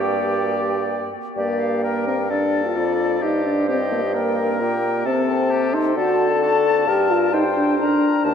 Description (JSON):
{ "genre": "quick classical-period movement for wind quintet", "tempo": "131 BPM", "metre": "4/4", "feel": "rubato", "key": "G minor", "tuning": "A4 = 441 Hz", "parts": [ { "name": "silver concert flute", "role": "melody", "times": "0.0-8.3 s", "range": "D5 to Bb5", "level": "-26 LUFS", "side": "left 6 dB", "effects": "none" }, { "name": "warm oboe", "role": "second line", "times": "0.0-8.3 s", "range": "G4 to D5", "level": "-27 LUFS", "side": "left 3 dB", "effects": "none" }, { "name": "clear clarinet", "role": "accompaniment", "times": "0.0-8.3 s", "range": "F#4 to D5", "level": "-30 LUFS", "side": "right 4 dB", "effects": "none" }, { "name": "mellow French horn", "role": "accompaniment", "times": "0.0-8.3 s", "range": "Bb3 to A4", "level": "-21 LUFS", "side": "left 2 dB", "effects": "none" }, { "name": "warm bassoon", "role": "bass", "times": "0.0-8.3 s", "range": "Eb2 to D3", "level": "-24 LUFS", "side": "right 3 dB", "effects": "none" } ], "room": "wet cathedral reverb, RT60 5.3 s", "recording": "in a vast, echoing space", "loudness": "-18 LUFS", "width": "side -7 dB against mid", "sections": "0.0-1.4 A section; 1.4-8.3 B section", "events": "none", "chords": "0.0 Gm; 2.3 Dm/G; 3.2 Eb/G; 5.1 Cm6; 6.0 D; 6.9 Gm" }